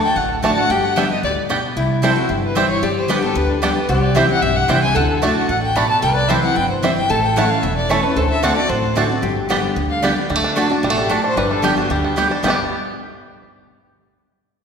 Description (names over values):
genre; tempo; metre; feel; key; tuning
bluegrass; 225 BPM; 4/4; straight; G major; A4 = 439 Hz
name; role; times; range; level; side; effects
dark fiddle; melody; 0.0-12.6 s; D4 to B5; -21 LUFS; left 2 dB; none
lap resonator guitar; second line; 0.0-10.1 s; E4 to B4; -24 LUFS; left 4 dB; none
picked steel-string acoustic guitar; accompaniment; 0.0-12.6 s; E2 to G4; -22 LUFS; left 1 dB; none
upright bass; bass; 0.2-12.6 s; E1 to D2; -24 LUFS; right 1 dB; none
bluegrass banjo; arpeggios; 0.4-12.6 s; G3 to G4; -23 LUFS; right 2 dB; none
mandolin; stabs; 0.4-12.6 s; A3 to A5; -23 LUFS; right 4 dB; none
room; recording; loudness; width
wet scoring stage reverb, RT60 1.8 s; recorded in a church or concert hall; -15 LUFS; side -6 dB against mid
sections
0.0-1.8 A section; 1.8-10.3 B section; 10.3-12.4 C section; 12.4-13.5 D section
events
none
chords
0.0 D; 0.7 G; 1.8 C; 2.8 G; 3.9 C; 5.0 D; 6.0 C; 7.1 A; 8.2 D7; 9.2 G; 10.3 D; 11.4 G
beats
0.16 0.43 | 0.70 0.96 1.23 1.50 | 1.76 2.03 2.29 2.56 | 2.83 3.09 3.36 3.63 | 3.89 4.16 4.43 4.69 | 4.96 5.23 5.50 5.76 | 6.03 6.29 6.56 6.83 | 7.09 7.36 7.63 7.90 | 8.16 8.43 8.70 8.96 | 9.23 9.50 9.76 10.03 | 10.30 10.57 10.83 11.10 | 11.37 11.64 11.90 12.17 | 12.44